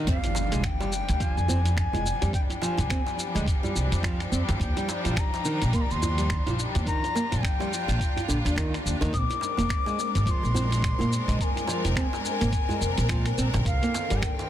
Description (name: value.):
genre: organic downtempo.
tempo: 106 BPM.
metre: 4/4.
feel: swing 58% on 16ths.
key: F dorian.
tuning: A4 = 439 Hz.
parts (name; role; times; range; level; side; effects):
clear symphonic string section; sustained chords; 0.0-14.5 s; D3 to Bb4; -33 LUFS; left 2 dB; sidechain pumping.
nylon-string guitar; arpeggios; 0.0-14.2 s; D3 to D4; -32 LUFS; right 2 dB; ping-pong delay.
bright reedy bansuri; melody; 0.1-14.5 s; F5 to Eb6; -32 LUFS; left 3 dB; digital delay.
upright bass; bass; 0.1-14.2 s; F1 to Bb2; -27 LUFS; equal; tube saturation, sidechain pumping.
dusty soul sampler-style drum kit; drums; 0.1-14.5 s; finger snaps, hi-hat, shaker, toms; -34 LUFS; equal; soft clipping on snare.
electronic kick drum; drums; 0.1-14.4 s; none; -28 LUFS; equal; none.
impact; sound effects; 0.1-2.3 s; none; -33 LUFS; equal; none.
djembe; percussion; 0.2-14.5 s; none; -35 LUFS; right 3 dB; none.
room: little or no reverb.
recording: dense, heavily limited modern master.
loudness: -23 LUFS.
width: side -11 dB against mid.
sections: 0.1-14.5 A section.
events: impact 0.1-2.3.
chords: 0.1 Fm69; 4.6 Ebmaj9; 9.1 Bb9; 13.7 Cm9.